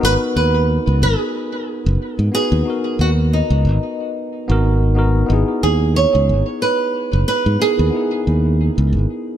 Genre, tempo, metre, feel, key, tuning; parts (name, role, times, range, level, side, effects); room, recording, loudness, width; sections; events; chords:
sunset chillout; 91 BPM; 4/4; swing 56% on 16ths; G# minor; A4 = 438 Hz
flamenco guitar; melody; 0.0-9.4 s; D#4 to C#5; -20 LUFS; right 4 dB; tape echo
tine electric piano; accompaniment; 0.0-9.4 s; B3 to B4; -22 LUFS; moving between left 4 dB and right 3 dB; auto-pan, vintage 12-bit sampler grit, tape echo
modern bright fingered electric bass; bass; 0.0-9.1 s; F#1 to G#2; -15 LUFS; equal
light reverb, studio reverb; echo-heavy mix; -15 LUFS; side -10 dB against mid
0.0-9.4 A section
0.0 G#m7; 5.3 C#m9 (rootless)